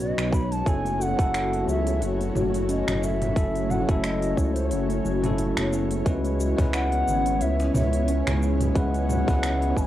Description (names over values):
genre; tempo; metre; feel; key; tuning
organic downtempo; 89 BPM; 4/4; swing 56% on 16ths; F# dorian; A4 = 439 Hz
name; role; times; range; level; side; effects
mellow bansuri; melody; 0.0-9.9 s; C#5 to B5; -30 LUFS; equal; cassette tape, tape echo, plate reverb
bell-like tine electric piano; accompaniment; 0.0-9.9 s; F#3 to B4; -30 LUFS; left 2 dB; fast stereo tremolo, vintage 12-bit sampler grit, sidechain pumping, analog delay, plate reverb
ethereal airy pad; sustained chords; 0.0-9.9 s; G#3 to C#5; -30 LUFS; equal; ensemble chorus, built-in reverb, sidechain pumping, plate reverb
smooth synth bass; bass; 0.0-9.9 s; F#1 to C#2; -27 LUFS; equal; tube saturation, sidechain pumping
organic electronic drum kit; drums; 0.0-9.9 s; finger snaps, hi-hat, shaker, toms; -31 LUFS; equal; overdrive
handpan; arpeggios; 0.2-9.9 s; C#3 to F#4; -33 LUFS; equal; none
electronic kick drum; drums; 0.3-9.9 s; none; -23 LUFS; equal; overdrive
cajon; percussion; 6.6-9.9 s; none; -34 LUFS; left 2 dB; none
room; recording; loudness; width
moderate studio reverb, RT60 0.6 s; home recording on cassette; -22 LUFS; side -13 dB against mid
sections
0.0-9.9 A section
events
kick drops out 4.7-6.1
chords
0.0 Badd9; 0.7 F#m7; 6.1 C#m7